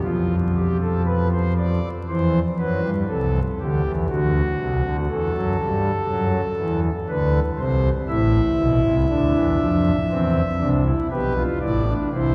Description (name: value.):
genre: classical, baroque-style 3-part fugue for pipe organ.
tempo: 59 BPM.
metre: 4/4.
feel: straight.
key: unclear.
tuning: A4 = 441 Hz.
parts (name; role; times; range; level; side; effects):
pipe organ, foundations; solo; 0.0-12.3 s; A1 to E5; -21 LUFS; equal; none.
room: wet cathedral reverb, RT60 6.0 s.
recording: dark, warm production, vinyl crackle.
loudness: -21 LUFS.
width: mono.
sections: 0.0-12.3 A section.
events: none.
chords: 0.0 G7/F; 2.1 C/E; 4.1 D; 6.1 D7; 8.1 Am; 10.1 C/E; 11.1 G/B.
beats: | 0.03 1.06 2.07 3.08 | 4.10 5.10 6.09 7.08 | 8.08 9.10 10.11 11.11 | 12.13.